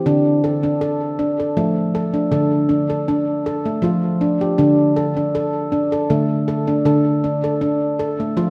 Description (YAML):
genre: world meditative, meditative tuned percussion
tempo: 79 BPM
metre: 3/4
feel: straight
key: D minor pentatonic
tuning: A4 = 440 Hz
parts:
  - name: handpan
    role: solo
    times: 0.0-8.5 s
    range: D3 to A4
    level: -19 LUFS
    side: equal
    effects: diffuse ambient delay
room: wet scoring stage reverb, RT60 2.1 s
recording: none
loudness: -19 LUFS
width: mono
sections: 0.0-8.5 A section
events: none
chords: 0.1 Dm; 4.6 D5; 6.9 Dm